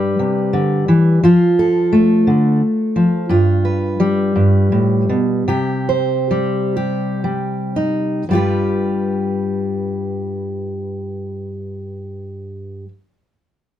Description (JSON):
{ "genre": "folk, solo fingerstyle acoustic guitar", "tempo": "35-59 BPM (dotted quarters)", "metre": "6/8", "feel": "rubato", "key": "G mixolydian", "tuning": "A4 = 440 Hz", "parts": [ { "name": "fingerpicked steel-string acoustic guitar", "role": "solo", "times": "0.0-12.9 s", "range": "G2 to C5", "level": "-15 LUFS", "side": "equal", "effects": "none" } ], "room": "light reverb", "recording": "dark, warm production", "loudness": "-14 LUFS", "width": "side -11 dB against mid", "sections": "0.0-8.3 A section; 8.3-13.8 B section", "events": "slowing down 3.3-8.3", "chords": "0.0 G; 1.2 F; 3.3 G7; 5.5 Cm; 8.3 G7", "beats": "0.18 | 1.22 2.25 | 3.28 4.33 | 5.46 6.75 | 8.29 9.97 | 11.63" }